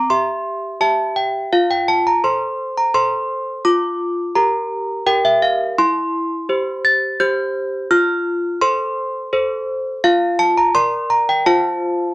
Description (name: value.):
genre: classical, lullaby for handbells.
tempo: 84 BPM.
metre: 3/4.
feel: straight.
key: F major.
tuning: A4 = 440 Hz.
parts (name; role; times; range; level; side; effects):
desk bells; solo; 0.0-12.1 s; E4 to A6; -15 LUFS; equal; none.
room: light reverb.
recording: worn, warbling old tape, cassette tape, warbly pitch drift.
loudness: -15 LUFS.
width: side -20 dB against mid.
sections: 0.0-12.1 A section.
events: none.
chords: 0.0 C; 1.5 F; 3.6 Gm7/F; 5.8 C/E; 7.9 F; 10.0 Bb/F; 11.5 F.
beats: 0.10 0.81 | 1.52 2.23 2.94 | 3.65 4.36 5.06 | 5.78 6.49 7.20 | 7.91 8.62 9.33 | 10.04 10.75 11.46.